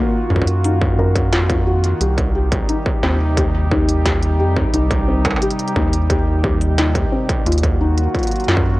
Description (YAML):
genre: IDM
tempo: 88 BPM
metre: 4/4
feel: straight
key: unclear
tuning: A4 = 440 Hz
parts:
  - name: warbly tape-like pad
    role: sustained chords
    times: 0.0-8.8 s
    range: C3 to G4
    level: -23 LUFS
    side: equal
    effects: chorus, built-in reverb, sidechain pumping
  - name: felt-muted upright piano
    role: arpeggios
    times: 0.0-8.6 s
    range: Bb3 to Bb4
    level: -23 LUFS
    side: left 2 dB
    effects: low-pass filter, ping-pong delay
  - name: rubbery square bass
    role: bass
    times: 0.3-8.8 s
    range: C2 to Gb2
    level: -17 LUFS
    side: equal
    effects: tube saturation
  - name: electronic kick drum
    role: drums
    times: 0.3-8.7 s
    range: none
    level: -20 LUFS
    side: equal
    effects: distortion
  - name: industrial drum kit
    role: drums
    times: 0.5-8.6 s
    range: hi-hat, snare drum, struck metal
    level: -24 LUFS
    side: right 1 dB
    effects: tape echo
room: little or no reverb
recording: worn, warbling old tape, cassette tape, warbly pitch drift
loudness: -15 LUFS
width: side -19 dB against mid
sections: 0.0-8.8 A section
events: filter sweep on felt piano 0.0-8.8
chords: 0.0 Ebmadd9; 2.0 Cm; 7.5 Ebmadd9